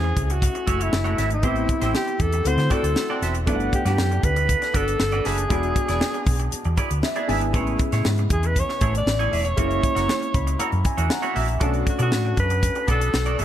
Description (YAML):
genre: polished 1980s jazz-funk pop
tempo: 118 BPM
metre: 4/4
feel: straight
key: F# minor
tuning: A4 = 436 Hz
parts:
  - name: breathy alto saxophone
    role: melody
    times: 0.0-13.4 s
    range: E4 to D5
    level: -26 LUFS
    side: equal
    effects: ping-pong delay
  - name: warm concert grand piano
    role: accompaniment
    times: 0.0-13.4 s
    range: C#3 to B5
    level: -28 LUFS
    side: left 1 dB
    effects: analog chorus
  - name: semi-hollow electric guitar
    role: riff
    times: 0.0-13.4 s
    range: A3 to E5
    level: -29 LUFS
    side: right 4 dB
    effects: lush chorus
  - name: hollow-body short-scale fingered electric bass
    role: bass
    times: 0.0-13.4 s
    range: E1 to D3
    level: -24 LUFS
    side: equal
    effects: none
  - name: tight funk drum kit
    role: drums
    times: 0.2-13.4 s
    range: hi-hat, kick drum, snare drum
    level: -25 LUFS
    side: equal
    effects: none
room: light reverb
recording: none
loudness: -19 LUFS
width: side -11 dB against mid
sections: 0.0-13.4 A section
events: grand piano fill 6.8-7.5, 10.1-11.6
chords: 0.0 F#m7; 1.4 Am7; 2.5 D7; 3.5 Gmaj7; 5.5 E7; 7.5 Amaj7; 9.6 F#7; 11.6 Bm7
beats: 0.42 0.93 | 1.44 1.95 2.46 2.97 | 3.48 3.98 4.49 5.00 | 5.51 6.02 6.53 7.04 | 7.54 8.05 8.56 9.07 | 9.58 10.09 10.59 11.10 | 11.61 12.12 12.63 13.13